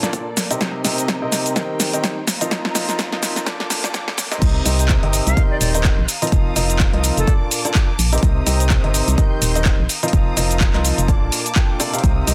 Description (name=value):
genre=piano house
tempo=126 BPM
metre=4/4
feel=swing 57% on 16ths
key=F mixolydian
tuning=A4 = 440 Hz
part: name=dark symphonic violin section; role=sustained chords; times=0.0-12.3 s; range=Bb3 to G6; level=-33 LUFS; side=equal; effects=sidechain pumping, low-pass filter
part: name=clear upright piano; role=riff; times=0.0-12.3 s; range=Bb2 to G5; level=-26 LUFS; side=equal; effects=sidechain pumping, low-pass filter, dub echo
part: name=punchy analog drum machine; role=drums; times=0.0-12.3 s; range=crash cymbal, handclaps, hi-hat, shaker, snare drum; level=-24 LUFS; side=equal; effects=none
part: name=electronic kick drum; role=drums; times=0.1-12.1 s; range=none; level=-20 LUFS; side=equal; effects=high-pass filter on kick, high-pass filter on room
part: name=organ-like FM bass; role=bass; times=4.4-12.3 s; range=Eb1 to C2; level=-22 LUFS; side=equal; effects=sidechain pumping
part: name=bright reedy silver concert flute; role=melody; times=5.3-7.3 s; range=A4 to F5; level=-30 LUFS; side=equal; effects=dub echo
room=light reverb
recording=dense, heavily limited modern master, high-pass filter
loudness=-18 LUFS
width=mono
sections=0.0-4.4 A section; 4.4-12.3 B section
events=build-up 0.0-4.4; drum fill 0.0-4.4; filter sweep on upright piano 0.0-4.4; filter sweep on violin section 0.0-4.4; drop 4.4-12.3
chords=0.0 Bbmaj7; 0.6 Cm7; 1.6 Eb6; 2.3 F7sus4; 3.5 Bbmaj7; 4.4 Cm7; 5.4 Eb6; 6.1 F7sus4; 7.3 Bbmaj7; 8.2 Cm7; 9.2 Eb6; 9.9 F7sus4; 11.1 Bbmaj7